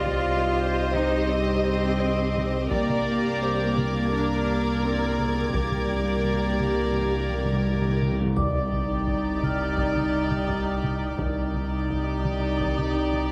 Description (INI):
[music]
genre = cinematic, suspense film score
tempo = 85 BPM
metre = 4/4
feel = straight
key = C minor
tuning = A4 = 440 Hz
[part]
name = warm studio violin section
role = melody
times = 0.0-13.3 s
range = D5 to Eb5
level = -36 LUFS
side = equal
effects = none
[part]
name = clear clarinet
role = second line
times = 0.0-8.0 s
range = G4 to Eb5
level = -36 LUFS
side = equal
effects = none
[part]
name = warm studio violin section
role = second line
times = 0.0-13.3 s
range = G4 to C5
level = -36 LUFS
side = equal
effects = none
[part]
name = dark symphonic viola section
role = accompaniment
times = 0.0-13.3 s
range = Eb4 to Bb4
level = -33 LUFS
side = equal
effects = none
[part]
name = dark French horn section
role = sustained chords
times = 0.0-12.9 s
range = Eb3 to D5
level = -39 LUFS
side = equal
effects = none
[part]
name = dark trombone section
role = sustained chords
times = 0.0-8.0 s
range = G2 to Bb3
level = -34 LUFS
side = equal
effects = none
[part]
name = warm studio cello section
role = bass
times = 0.0-13.3 s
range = C2 to F4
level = -34 LUFS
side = equal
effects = none
[part]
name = warm studio double bass section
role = bass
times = 0.0-13.3 s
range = C2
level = -34 LUFS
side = equal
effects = none
[part]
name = saturated sub bass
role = drone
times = 0.0-13.3 s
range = C2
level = -34 LUFS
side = equal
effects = none
[part]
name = vibraphone with medium hard mallets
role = texture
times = 0.0-13.3 s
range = D5 to F6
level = -38 LUFS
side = equal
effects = none
[part]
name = taiko ensemble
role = drums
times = 0.1-13.3 s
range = none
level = -35 LUFS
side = equal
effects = none
[part]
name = timpani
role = percussion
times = 2.7-9.4 s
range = C3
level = -32 LUFS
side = equal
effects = none
[part]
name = rich studio violin section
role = texture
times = 2.7-8.0 s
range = D6 to Ab6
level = -40 LUFS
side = equal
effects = none
[part]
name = sub drop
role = sound effects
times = 8.4-11.2 s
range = none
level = -39 LUFS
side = equal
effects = none
[sound]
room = wet scoring stage reverb, RT60 1.6 s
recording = heavily compressed radio sound, multiband compression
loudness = -25 LUFS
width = mono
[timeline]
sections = 0.0-8.4 A section; 8.4-13.3 B section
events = timpani fill 2.7-8.4; impact 8.4-11.2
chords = 0.0 Cm; 2.7 Gm/C; 8.4 Cmadd9